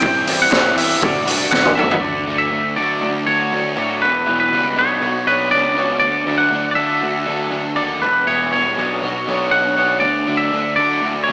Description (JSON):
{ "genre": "indie rock", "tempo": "120 BPM", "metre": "4/4", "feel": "straight", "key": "D major", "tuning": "A4 = 441 Hz", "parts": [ { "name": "twangy electric guitar", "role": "melody", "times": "0.0-11.3 s", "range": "B4 to G5", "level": "-17 LUFS", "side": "equal", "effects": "harmonic tremolo" }, { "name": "string machine, full ensemble", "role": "sustained chords", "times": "0.0-2.0 s", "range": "none", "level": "barely audible", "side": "none", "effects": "none" }, { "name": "overdriven electric guitar", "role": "riff", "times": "0.0-11.3 s", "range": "B2 to E4", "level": "-24 LUFS", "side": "left 1 dB", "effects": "spring reverb, slapback echo" }, { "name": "raw garage guitar", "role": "riff", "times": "0.0-11.3 s", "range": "E2 to C#5", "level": "-23 LUFS", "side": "right 1 dB", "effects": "overdrive, ensemble chorus, slapback echo, tape echo" }, { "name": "fuzz picked electric bass", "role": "bass", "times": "0.0-11.3 s", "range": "E1 to D3", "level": "-25 LUFS", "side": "equal", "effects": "overdrive" }, { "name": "raw garage drum kit", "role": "drums", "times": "0.0-2.0 s", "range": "hi-hat, kick drum, snare drum, toms", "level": "-17 LUFS", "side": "equal", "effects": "none" }, { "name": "group handclap", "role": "percussion", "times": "0.5-1.6 s", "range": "none", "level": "barely audible", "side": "none", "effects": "none" } ], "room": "wet scoring stage reverb, RT60 1.8 s, small room ambience", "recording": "big arena sound, small speaker sound", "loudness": "-14 LUFS", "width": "side -29 dB against mid", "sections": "0.0-2.0 A section; 2.0-11.3 B section", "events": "drum fill 1.5-2.0", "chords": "0.0 Cadd9; 1.0 Dadd9; 2.0 D; 4.0 Em; 4.8 Bmadd9; 6.0 D; 8.0 Em; 8.8 Bmadd9; 10.0 D" }